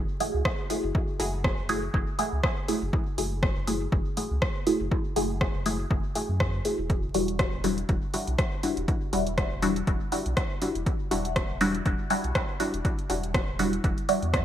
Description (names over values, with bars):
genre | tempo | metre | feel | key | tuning
dub techno | 121 BPM | 4/4 | swing 56% on 16ths | F# phrygian | A4 = 439 Hz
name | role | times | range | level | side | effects
warm sub bass | bass | 0.0-14.4 s | E1 to F#2 | -32 LUFS | equal | tube saturation, sidechain pumping
filtered dub chord stab | stabs | 0.2-14.3 s | G3 to G#4 | -28 LUFS | equal | phaser, sidechain pumping, dub echo
deep house drum kit | drums | 0.2-14.4 s | hi-hat, rim click | -32 LUFS | equal | overdrive, gated reverb
electronic kick drum | drums | 0.5-14.4 s | none | -28 LUFS | equal | overdrive
room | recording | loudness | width
light reverb, digital ambience | bright 1980s-style digital production, vinyl crackle | -25 LUFS | side -10 dB against mid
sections
0.0-14.4 A section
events
none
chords
0.0 F#m9; 6.9 Em9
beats
0.45 | 0.95 1.44 1.94 2.44 | 2.93 3.43 3.92 4.42 | 4.92 5.41 5.91 6.40 | 6.90 7.39 7.89 8.39 | 8.88 9.38 9.87 10.37 | 10.87 11.36 11.86 12.35 | 12.85 13.34 13.84 14.34